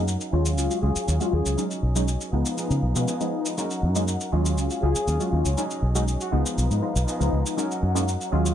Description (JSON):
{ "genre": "filtered disco house", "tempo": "120 BPM", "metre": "4/4", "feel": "straight", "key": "F# major", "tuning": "A4 = 440 Hz", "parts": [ { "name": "funky polysynth comp", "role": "accompaniment", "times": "0.0-8.5 s", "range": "E#3 to E#4", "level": "-28 LUFS", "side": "left 1 dB", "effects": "chorus, phaser, low-pass filter" }, { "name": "rich chamber violin section", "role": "sustained chords", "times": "0.0-8.5 s", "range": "C#4 to F#5", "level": "-34 LUFS", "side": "left 2 dB", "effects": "low-pass filter" }, { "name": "semi-hollow electric guitar", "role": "riff", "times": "0.0-8.5 s", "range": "E#3 to A#4", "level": "-33 LUFS", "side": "right 2 dB", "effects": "low-pass filter" }, { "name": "fingered electric bass", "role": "bass", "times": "0.0-8.5 s", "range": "B1 to C#3", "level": "-23 LUFS", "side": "equal", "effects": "low-pass filter" }, { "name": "shaker", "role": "drums", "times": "0.1-8.5 s", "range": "none", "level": "-32 LUFS", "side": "left 1 dB", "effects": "none" }, { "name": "brilliant horn section", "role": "melody", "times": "0.8-1.6, 4.8-6.4 s", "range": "F#4 to G#4", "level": "-32 LUFS", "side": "left 2 dB", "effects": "low-pass filter, dub echo" } ], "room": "light reverb", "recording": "none", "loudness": "-22 LUFS", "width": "side -10 dB against mid", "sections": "0.0-8.5 A section", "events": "filter sweep 0.0-8.5", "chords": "0.3 D#m11; 1.6 B69; 2.3 C#9; 3.6 F#6; 4.3 D#m11; 5.6 B69; 6.3 C#9; 7.6 F#6", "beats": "0.08 0.58 1.08 | 1.58 2.08 2.58 3.08 | 3.58 4.08 4.58 5.08 | 5.58 6.08 6.58 7.08 | 7.58 8.08" }